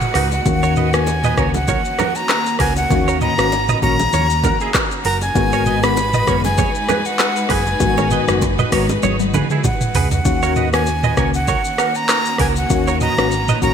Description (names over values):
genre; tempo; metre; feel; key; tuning
afrobeats; 98 BPM; 4/4; swing 55% on 16ths; G# minor; A4 = 440 Hz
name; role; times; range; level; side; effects
breathy bright jazz flute; melody; 0.0-13.7 s; F#5 to B5; -21 LUFS; equal; digital delay
clear studio string section; sustained chords; 0.0-13.7 s; D#3 to B4; -26 LUFS; equal; none
afro-pop drum kit; drums; 0.0-13.7 s; handclaps, hi-hat, kick drum, rim click, shaker, toms; -20 LUFS; equal; overdrive, gated reverb
direct-recorded clean electric guitar; riff; 0.2-13.7 s; D#4 to D#5; -24 LUFS; right 9 dB; ensemble chorus, digital delay
hollow-body short-scale fingered electric bass; bass; 0.2-13.7 s; F#1 to D#2; -21 LUFS; equal; none
bongos and congas; percussion; 0.3-10.2 s; none; -27 LUFS; right 6 dB; none
tine electric piano; accompaniment; 0.5-13.7 s; D#3 to F#4; -22 LUFS; left 6 dB; ensemble chorus
room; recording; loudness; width
light reverb; bright 1980s-style digital production; -14 LUFS; side -8 dB against mid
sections
0.0-10.3 A section; 10.3-13.7 A section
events
drum fill 9.0-10.3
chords
0.0 G#m7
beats
| 0.46 1.07 1.68 2.29 | 2.91 3.52 4.13 4.74 | 5.36 5.97 6.58 7.19 | 7.80 8.42 9.03 9.64 | 10.25 10.87 11.48 12.09 | 12.70 13.31